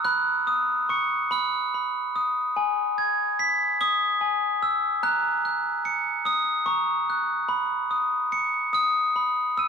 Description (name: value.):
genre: children's music, lullaby.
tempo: 48 BPM (dotted quarters).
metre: 6/8.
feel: rubato.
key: B major.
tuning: A4 = 440 Hz.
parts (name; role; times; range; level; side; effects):
glockenspiel with soft plastic mallets; solo; 0.0-9.7 s; G#5 to B7; -22 LUFS; equal; none.
room: moderate recital hall reverb, RT60 1.7 s.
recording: dark, warm production.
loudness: -22 LUFS.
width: side -6 dB against mid.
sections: 0.0-9.7 A section.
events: none.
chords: 0.0 Badd9; 2.6 E; 5.0 F#; 7.5 Badd9.